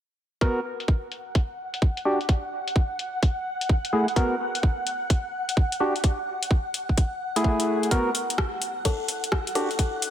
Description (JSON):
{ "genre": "UK garage, two-step garage", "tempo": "128 BPM", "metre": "4/4", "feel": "swing 65% on 16ths", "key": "unclear", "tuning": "A4 = 441 Hz", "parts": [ { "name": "soft string machine", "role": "sustained chords", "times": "1.1-10.1 s", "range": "F#5", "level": "-31 LUFS", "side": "equal", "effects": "ensemble chorus, sidechain pumping" }, { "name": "percussive organ stab", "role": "stabs", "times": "0.4-9.7 s", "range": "A3 to A#4", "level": "-26 LUFS", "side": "equal", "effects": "chorus, cassette tape, dub echo" }, { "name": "electronic kick drum", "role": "drums", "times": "0.4-9.9 s", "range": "none", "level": "-22 LUFS", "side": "equal", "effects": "none" }, { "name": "garage drum kit", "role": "drums", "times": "0.4-10.1 s", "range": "hi-hat, rim click", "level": "-29 LUFS", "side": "left 2 dB", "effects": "low-pass filter on hats, low-pass filter on snare" }, { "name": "buzzing kalimba", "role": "melody", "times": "8.9-9.7 s", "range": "A4", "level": "-30 LUFS", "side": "left 5 dB", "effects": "dub echo" } ], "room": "light reverb, digital ambience", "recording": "none", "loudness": "-23 LUFS", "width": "side -10 dB against mid", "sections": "0.4-10.1 A section", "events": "none", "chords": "0.4 B5; 1.4 Dadd11; 2.3 N.C.; 3.2 F#m7; 4.2 B5; 5.1 Dadd11; 6.0 N.C.; 7.0 F#m7; 7.9 B5; 8.8 Dadd11", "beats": "| 0.41 0.88 1.35 1.82 | 2.29 2.76 3.23 3.69 | 4.16 4.63 5.10 5.57 | 6.04 6.51 6.97 7.44 | 7.91 8.38 8.85 9.32 | 9.79" }